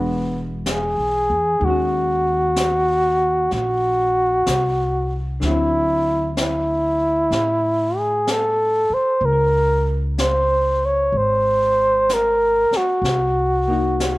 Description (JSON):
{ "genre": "jazz ballad", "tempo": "63 BPM", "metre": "4/4", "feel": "swing 67% on 8ths", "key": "unclear", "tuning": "A4 = 440 Hz", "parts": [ { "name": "breathy flugelhorn", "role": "melody", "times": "0.0-14.2 s", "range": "Cb4 to Db5", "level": "-18 LUFS", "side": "equal", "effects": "slapback echo" }, { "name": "hollow-body jazz guitar", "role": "accompaniment", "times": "0.0-14.2 s", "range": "D3 to Bb4", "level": "-28 LUFS", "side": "left 2 dB", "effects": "none" }, { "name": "upright bass", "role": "bass", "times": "0.0-14.2 s", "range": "E1 to A2", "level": "-25 LUFS", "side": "equal", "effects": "none" }, { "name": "vintage brush drum kit", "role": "drums", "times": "0.7-14.2 s", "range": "brushed snare drum, hi-hat, snare drum", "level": "-28 LUFS", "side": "left 1 dB", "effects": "none" } ], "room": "little or no reverb", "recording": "none", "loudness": "-17 LUFS", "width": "side -19 dB against mid", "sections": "0.0-14.2 A section", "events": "none", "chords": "0.0 E9; 1.6 Ebm7; 5.4 D9; 9.2 Db5; 13.0 Cm7b5", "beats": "0.66 | 1.61 2.56 3.51 4.46 | 5.42 6.37 7.32 8.27 | 9.23 10.18 11.13 12.09 | 13.04 13.99" }